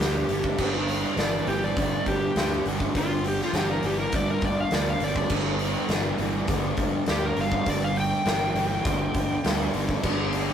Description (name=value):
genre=blues rock power trio and southern rock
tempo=102 BPM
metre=4/4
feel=straight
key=G mixolydian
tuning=A4 = 440 Hz
part: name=overdriven slide guitar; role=melody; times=0.0-9.7 s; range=F4 to G5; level=-28 LUFS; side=equal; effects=none
part: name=overdriven tonewheel organ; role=sustained chords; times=0.0-10.5 s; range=D3 to B4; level=-38 LUFS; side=right 2 dB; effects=none
part: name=fuzz guitar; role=riff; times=0.0-10.5 s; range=G2 to E3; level=-29 LUFS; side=right 1 dB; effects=distortion
part: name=growling fingered electric bass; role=bass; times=0.0-10.5 s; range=G1 to D2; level=-31 LUFS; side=equal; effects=overdrive
part: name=oversized low-tuned drum kit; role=drums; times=0.0-10.5 s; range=crash cymbal, hi-hat, kick drum, snare drum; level=-27 LUFS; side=equal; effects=none
room=light reverb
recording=rough rehearsal-room recording, warm saturation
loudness=-23 LUFS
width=side -8 dB against mid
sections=0.0-10.5 A section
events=electric slide guitar solo 0.0-10.5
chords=0.0 G